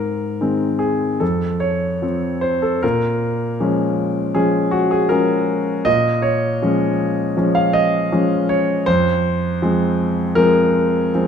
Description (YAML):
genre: neoclassical minimalist piano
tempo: 79 BPM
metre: 4/4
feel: rubato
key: Bb minor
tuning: A4 = 440 Hz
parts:
  - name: warm concert grand piano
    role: solo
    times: 0.0-11.3 s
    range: F2 to F5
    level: -16 LUFS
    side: equal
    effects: none
room: moderate scoring stage reverb, RT60 2.0 s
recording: minimal, uncompressed stereo recording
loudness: -16 LUFS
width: side -7 dB against mid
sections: 0.0-2.8 A section; 2.8-11.3 A section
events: none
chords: 0.0 Ab; 1.2 F; 2.8 Bbm7; 8.9 Fm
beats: 0.40 1.21 2.03 | 2.83 3.59 4.35 5.10 | 5.86 6.62 7.37 8.12 | 8.87 9.62 10.37 11.15